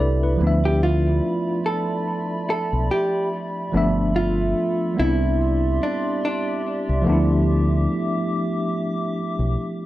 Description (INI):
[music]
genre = hip hop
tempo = 72 BPM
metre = 4/4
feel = swing 57% on 16ths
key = D dorian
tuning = A4 = 440 Hz
[part]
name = tine electric piano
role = accompaniment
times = 0.0-9.9 s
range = F3 to E5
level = -23 LUFS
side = equal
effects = medium stereo tremolo, cassette tape
[part]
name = warbly tape-like pad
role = sustained chords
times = 0.0-9.9 s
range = F4 to D6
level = -29 LUFS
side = equal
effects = chorus, built-in reverb
[part]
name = deep dub fingered electric bass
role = bass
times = 0.0-9.5 s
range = G1 to D2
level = -21 LUFS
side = equal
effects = none
[part]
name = vintage hollow-body jazz guitar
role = melody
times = 0.7-6.6 s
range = D4 to A4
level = -25 LUFS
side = right 1 dB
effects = tape echo
[sound]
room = moderate studio reverb, RT60 0.5 s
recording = worn, warbling old tape, cassette tape, warbly pitch drift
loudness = -19 LUFS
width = side -15 dB against mid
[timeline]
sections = 0.4-9.9 A section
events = none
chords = 0.4 Dm69; 3.7 G13; 5.0 Cmaj9; 7.1 Dm69